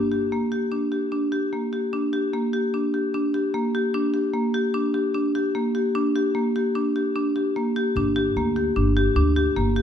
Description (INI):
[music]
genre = contemporary instrumental, chamber music in an uneven meter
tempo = 149 BPM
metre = 5/4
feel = straight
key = G minor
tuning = A4 = 440 Hz
[part]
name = marimba with medium hard mallets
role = arpeggios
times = 0.0-9.8 s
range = Bb3 to G4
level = -21 LUFS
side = left 1 dB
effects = none
[part]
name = upright bass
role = bass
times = 8.0-9.8 s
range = G1 to D2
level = -24 LUFS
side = equal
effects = none
[sound]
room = wet recital hall reverb, RT60 1.6 s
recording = none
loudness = -21 LUFS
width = side -8 dB against mid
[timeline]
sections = 0.0-9.8 A section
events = none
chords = 0.0 Gm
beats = 0.32 0.72 1.12 1.53 | 1.93 2.33 2.73 3.14 3.54 | 3.94 4.34 4.75 5.15 5.55 | 5.95 6.36 6.76 7.16 7.56 | 7.96 8.37 8.77 9.17 9.57